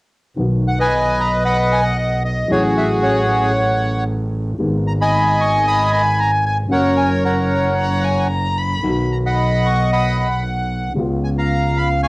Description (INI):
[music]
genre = tango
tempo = 114 BPM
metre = 4/4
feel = rubato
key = B major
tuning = A4 = 440 Hz
[part]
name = dark concert grand piano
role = accompaniment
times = 0.4-12.1 s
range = G#1 to G#4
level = -22 LUFS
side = left 1 dB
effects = cassette tape
[part]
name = warm double bass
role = bass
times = 0.4-12.1 s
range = F#1 to C#2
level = -20 LUFS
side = right 1 dB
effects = none
[part]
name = bandoneon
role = melody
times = 0.7-12.1 s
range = F#4 to D#6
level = -17 LUFS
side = equal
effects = cassette tape
[part]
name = warm violin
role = second line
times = 7.8-9.0 s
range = F#5 to B5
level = -23 LUFS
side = left 2 dB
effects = cassette tape
[sound]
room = moderate studio reverb, RT60 0.5 s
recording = home recording on cassette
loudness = -15 LUFS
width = side -24 dB against mid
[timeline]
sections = 0.4-12.1 A section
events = none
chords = 0.4 B; 2.5 F#madd9/A; 4.6 G#m; 6.7 F#; 8.8 B; 11.0 C#7